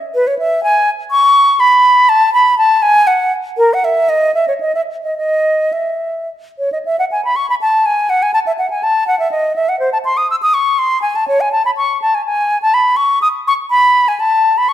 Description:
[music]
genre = classical, baroque-style fantasia for unaccompanied flute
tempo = 102-126 BPM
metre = 3/4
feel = rubato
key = E major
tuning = A4 = 441 Hz
[part]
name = concert flute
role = solo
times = 0.1-14.7 s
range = A#4 to E6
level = -11 LUFS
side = equal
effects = none
[sound]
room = moderate recital hall reverb, RT60 1.6 s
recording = none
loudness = -11 LUFS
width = side -11 dB against mid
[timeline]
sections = 0.0-6.9 A section; 6.9-14.7 A section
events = none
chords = none

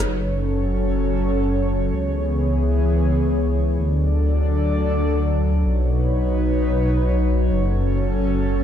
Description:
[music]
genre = future garage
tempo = free time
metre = none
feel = none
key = F# minor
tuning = A4 = 441 Hz
[part]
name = airy breathy pad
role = sustained chords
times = 0.0-8.6 s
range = E3 to D5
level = -22 LUFS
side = left 1 dB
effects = chorus, vintage 12-bit sampler grit
[part]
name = dark detuned saw bass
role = bass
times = 0.0-8.6 s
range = F#1 to D2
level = -20 LUFS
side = equal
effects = none
[sound]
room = light reverb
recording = none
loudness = -18 LUFS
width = side -9 dB against mid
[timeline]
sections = 0.1-8.6 A section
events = none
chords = 0.1 F#m; 1.9 C#m7; 3.8 D; 5.7 Badd9; 7.5 F#m

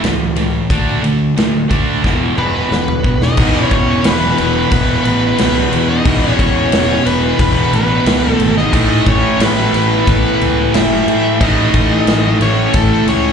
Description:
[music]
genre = hard rock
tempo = 90 BPM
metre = 4/4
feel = straight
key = unclear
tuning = A4 = 440 Hz
[part]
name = high-gain distorted guitar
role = riff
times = 0.0-13.3 s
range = E2 to D4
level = -20 LUFS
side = left 10 dB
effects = distortion, slapback echo
[part]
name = high-gain distorted guitar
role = riff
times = 0.0-13.3 s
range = E2 to D4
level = -19 LUFS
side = right 10 dB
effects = distortion, slapback echo
[part]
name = fuzz fingered electric bass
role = bass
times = 0.0-13.3 s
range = E1 to A2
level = -19 LUFS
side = equal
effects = overdrive
[part]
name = big rock drum kit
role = drums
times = 0.0-13.2 s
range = crash cymbal, kick drum, ride cymbal, snare drum, toms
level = -17 LUFS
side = equal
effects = none
[part]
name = smooth overdriven lead guitar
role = melody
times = 2.4-13.3 s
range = A4 to E5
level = -18 LUFS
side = left 1 dB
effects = slapback echo
[part]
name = dark smooth lead guitar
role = second line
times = 2.4-13.3 s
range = A3 to E4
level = -22 LUFS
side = right 3 dB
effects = overdrive, slapback echo
[part]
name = overdriven electric guitar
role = riff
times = 3.4-13.3 s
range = E2 to A3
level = -21 LUFS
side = left 1 dB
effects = none
[sound]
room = light reverb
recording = live gig heard through the venue's PA, club ambience, nothing above 10.7 kHz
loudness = -11 LUFS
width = side -7 dB against mid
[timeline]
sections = 0.0-3.4 A section; 3.4-13.3 B section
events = drum fill 2.0-3.4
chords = 0.0 A; 0.7 D5; 2.0 E5; 8.7 A

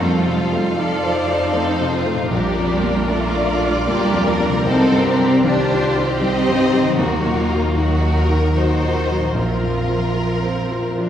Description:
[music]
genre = cinematic, emotional film score for orchestra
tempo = 77 BPM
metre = 3/4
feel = rubato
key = Bb major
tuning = A4 = 440 Hz
[part]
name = rich studio violin section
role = melody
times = 0.0-11.1 s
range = F4 to C5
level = -26 LUFS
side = left 1 dB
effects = none
[part]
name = warm studio violin section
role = second line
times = 0.0-11.1 s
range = F4 to F5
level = -24 LUFS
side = left 1 dB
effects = none
[part]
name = felt-muted upright piano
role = accompaniment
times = 0.0-11.1 s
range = Bb1 to Eb5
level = -22 LUFS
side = left 1 dB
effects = none
[part]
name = rich studio viola section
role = accompaniment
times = 0.0-11.1 s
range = C4 to D5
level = -25 LUFS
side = equal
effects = none
[part]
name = concert harp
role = arpeggios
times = 0.0-11.1 s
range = Bb2 to D6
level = -28 LUFS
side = left 2 dB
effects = none
[part]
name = rich studio double bass section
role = bass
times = 0.0-11.1 s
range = Bb1 to F2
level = -24 LUFS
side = right 1 dB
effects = none
[part]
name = warm studio cello section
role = bass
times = 0.0-11.1 s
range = Eb3 to D4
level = -22 LUFS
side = right 1 dB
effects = none
[sound]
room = wet scoring stage reverb, RT60 1.7 s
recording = heard from further back in the room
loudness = -16 LUFS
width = side -10 dB against mid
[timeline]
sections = 0.0-11.1 A section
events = none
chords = 0.0 F7; 2.3 Bb6; 4.7 Cmadd9; 7.0 Ebm; 9.4 Bbsus2

